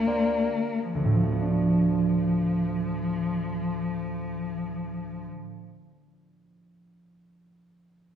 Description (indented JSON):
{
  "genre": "classical, impressionist duo for cello and harp",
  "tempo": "37 BPM",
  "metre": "3/4",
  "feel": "rubato",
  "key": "D minor",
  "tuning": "A4 = 439 Hz",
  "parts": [
    { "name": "rich cello", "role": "melody", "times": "0.0-5.2 s", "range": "F3 to Bb3", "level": "-28 LUFS", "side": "left 3 dB", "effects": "none" },
    { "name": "concert harp", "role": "accompaniment", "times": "0.0-5.7 s", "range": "D2 to D5", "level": "-26 LUFS", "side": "right 2 dB", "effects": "none" }
  ],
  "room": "wet recital hall reverb, RT60 1.4 s",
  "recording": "recorded in a church or concert hall",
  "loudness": "-24 LUFS",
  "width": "side -9 dB against mid",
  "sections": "0.9-5.8 A section",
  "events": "none",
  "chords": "0.0 C7sus2/D; 0.9 Dm6",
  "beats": "| 0.95 2.58 4.18"
}